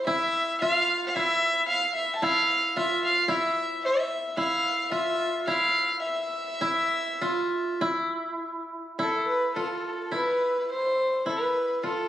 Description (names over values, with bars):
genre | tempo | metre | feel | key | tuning
japanese traditional, Japanese chamber music | 49-56 BPM | 4/4 | rubato | E miyako bushi | A4 = 441 Hz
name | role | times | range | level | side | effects
dark fiddle | melody | 0.0-12.1 s | A4 to A5 | -25 LUFS | equal | none
koto | second line | 0.0-12.1 s | E4 to F4 | -28 LUFS | equal | none
room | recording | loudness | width
light reverb | recorded on a phone in the room, studio reverb, compression | -24 LUFS | side -12 dB against mid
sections
0.0-9.0 A section; 9.0-12.1 B section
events
none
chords
none